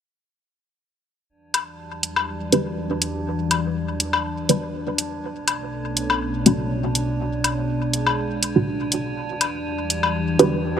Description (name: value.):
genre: dub techno.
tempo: 122 BPM.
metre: 4/4.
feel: swing 53% on 16ths.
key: E minor.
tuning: A4 = 442 Hz.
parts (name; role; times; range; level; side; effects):
dark analog pad; sustained chords; 1.9-10.8 s; B2 to D5; -27 LUFS; left 2 dB; chorus.
metallic inharmonic drone; texture; 1.7-10.8 s; D4; -30 LUFS; right 3 dB; chorus, built-in reverb, phaser.
electronic hi-hat; drums; 1.5-10.5 s; none; -20 LUFS; right 1 dB; overdrive.
woodblock; percussion; 1.5-10.1 s; none; -25 LUFS; left 5 dB; dub echo.
filtered dub chord stab; stabs; 2.5-10.6 s; A3 to B4; -20 LUFS; right 1 dB; phaser, vintage 12-bit sampler grit, dub echo.
room: moderate huge ambient reverb, RT60 4.2 s.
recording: none.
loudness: -20 LUFS.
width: side -8 dB against mid.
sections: 1.3-10.8 A section.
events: filter sweep on synth stab 1.3-10.8.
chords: 1.3 Em9; 5.2 Bm9; 9.2 Em9.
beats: | 1.30 1.79 2.28 2.77 | 3.26 3.75 4.25 4.74 | 5.23 5.72 6.21 6.71 | 7.20 7.69 8.18 8.67 | 9.16 9.66 10.15 10.64.